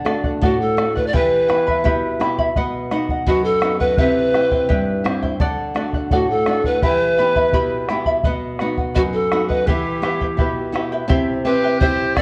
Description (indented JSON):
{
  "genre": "andean folk, Andean ensemble",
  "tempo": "84 BPM",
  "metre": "2/4",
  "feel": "straight",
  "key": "E minor",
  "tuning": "A4 = 440 Hz",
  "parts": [
    { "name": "charango", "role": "accompaniment", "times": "0.0-12.2 s", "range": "E4 to B5", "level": "-25 LUFS", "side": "equal", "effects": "none" },
    { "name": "flamenco guitar", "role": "accompaniment", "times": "0.0-12.2 s", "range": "F#2 to G4", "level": "-26 LUFS", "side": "equal", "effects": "none" },
    { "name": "bombo", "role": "percussion", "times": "0.1-12.2 s", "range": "none", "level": "-25 LUFS", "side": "equal", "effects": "none" },
    { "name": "breathy pan flute", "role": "melody", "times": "0.4-12.2 s", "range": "F#4 to D5", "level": "-21 LUFS", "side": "equal", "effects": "none" },
    { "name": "trumpet with metal mute", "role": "second line", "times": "11.5-12.2 s", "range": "G4 to A4", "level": "-26 LUFS", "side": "equal", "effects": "none" }
  ],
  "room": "moderate recital hall reverb, RT60 1.4 s",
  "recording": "worn, warbling old tape, cassette tape, warbly pitch drift",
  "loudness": "-18 LUFS",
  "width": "mono",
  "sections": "0.0-11.1 A section; 11.1-12.2 B section",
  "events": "none",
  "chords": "0.0 D; 1.1 Em; 2.6 B; 4.0 C; 5.4 D; 6.8 Em; 8.3 B; 9.7 Em; 11.1 C"
}